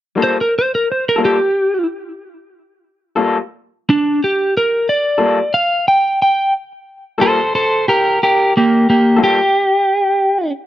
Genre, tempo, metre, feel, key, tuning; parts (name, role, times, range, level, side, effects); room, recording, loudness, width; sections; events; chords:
blues; 60 BPM (dotted quarters); 12/8; straight; G minor; A4 = 439 Hz
lightly driven lead guitar; melody; 0.2-10.5 s; Bb3 to G5; -13 LUFS; equal
electric guitar through a small old amp; accompaniment; 0.2-9.4 s; G3 to A4; -16 LUFS; left 4 dB; harmonic tremolo
light reverb; -13 LUFS; side -13 dB against mid
0.2-10.7 A section
lead electric guitar solo 0.2-10.7
0.2 Gm9